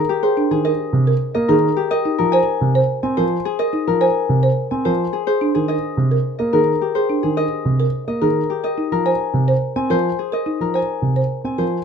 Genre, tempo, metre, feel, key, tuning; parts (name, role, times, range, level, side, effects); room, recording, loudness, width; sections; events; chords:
classical, minimalist pattern music; 107 BPM; 3/4; straight; A4 = 441 Hz
Celtic harp; melody; 0.0-11.8 s; G4 to Ab5; -22 LUFS; left 11 dB
folk marimba with soft mallets; arpeggios; 0.2-11.8 s; D4 to C5; -21 LUFS; right 4 dB
dark grand piano; accompaniment; 0.5-11.8 s; C3 to C4; -19 LUFS; right 2 dB
light reverb; dark, warm production; -16 LUFS; side -6 dB against mid
0.0-11.8 A section
0.0 Abmaj9; 1.9 Bb7sus4; 5.3 Abmaj9; 8.6 Bb7sus4